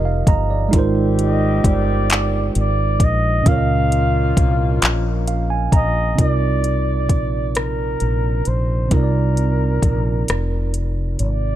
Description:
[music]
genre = slow six-eight R&B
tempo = 44 BPM (dotted quarters)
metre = 6/8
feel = straight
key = unclear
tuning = A4 = 438 Hz
[part]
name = mellow tine electric piano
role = accompaniment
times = 0.0-11.6 s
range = Bb2 to Bb5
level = -22 LUFS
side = right 4 dB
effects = none
[part]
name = mellow horn section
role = stabs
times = 0.0-5.7 s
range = Eb3 to Bb4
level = -28 LUFS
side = left 9 dB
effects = none
[part]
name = mellow fretless electric bass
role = bass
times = 0.0-11.6 s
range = F1 to Db2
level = -19 LUFS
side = equal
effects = none
[part]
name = smooth R&B drum kit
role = drums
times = 0.3-11.4 s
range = handclaps, hi-hat, kick drum, rim click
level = -17 LUFS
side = left 1 dB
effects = none
[part]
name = breathy flugelhorn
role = melody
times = 1.2-11.6 s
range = Bb4 to F5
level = -24 LUFS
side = equal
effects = none
[sound]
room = little or no reverb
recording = none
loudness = -16 LUFS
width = side -12 dB against mid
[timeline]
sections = 0.0-6.2 A section; 6.2-11.6 B section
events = tine electric piano fill 0.0-0.7, 4.8-6.2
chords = 0.0 Ebmaj9; 0.7 Ab6; 3.5 Db6; 6.2 Cm11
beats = | 0.73 2.10 | 3.46 4.82 | 6.18 7.55 | 8.91 10.28

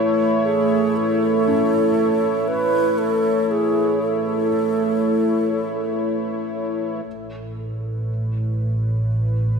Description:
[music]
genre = ambient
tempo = free time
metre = none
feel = none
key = A major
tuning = A4 = 445 Hz
[part]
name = warm analog pad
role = sustained chords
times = 0.0-9.6 s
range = A3 to C#5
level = -21 LUFS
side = left 1 dB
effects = chorus
[part]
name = felt-muted upright piano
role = arpeggios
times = 0.0-7.1 s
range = A3 to C#4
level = -33 LUFS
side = equal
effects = tape echo
[part]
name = wooden-headed alto flute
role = melody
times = 0.4-6.5 s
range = G#4 to B4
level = -23 LUFS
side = right 3 dB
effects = tape echo
[part]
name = dark chamber double bass section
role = bass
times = 7.1-9.6 s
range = A1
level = -21 LUFS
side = right 1 dB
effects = none
[sound]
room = wet concert hall reverb, RT60 2.2 s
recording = none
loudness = -18 LUFS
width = side -5 dB against mid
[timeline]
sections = 0.0-7.1 A section; 7.1-9.6 B section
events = none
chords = 0.0 A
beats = free time

